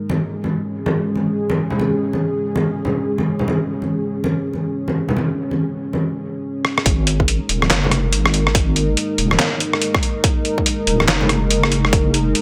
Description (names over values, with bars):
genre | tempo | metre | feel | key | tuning
deep dubstep | 142 BPM | 4/4 | swing 61% on 16ths, half-time | unclear | A4 = 436 Hz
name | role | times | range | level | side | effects
dark analog pad | sustained chords | 0.0-12.4 s | G#3 to A#4 | -24 LUFS | equal | chorus
congas | percussion | 0.1-11.3 s | none | -24 LUFS | equal | dub echo
trip hop sampler-style drum kit | drums | 6.6-12.4 s | handclaps, hi-hat, rim click, snare drum | -21 LUFS | equal | low-pass filter on snare, low-pass filter on hats
deep soft wobble bass | bass | 6.9-12.3 s | D#1 to G#1 | -21 LUFS | equal | chorus
electronic kick drum | drums | 6.9-12.0 s | none | -20 LUFS | equal | overdrive
room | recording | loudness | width
light reverb, digital ambience | none | -19 LUFS | mono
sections
0.0-6.9 A section; 6.9-12.4 B section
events
drum fill 6.6; drop 6.9-12.4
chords
0.0 G#5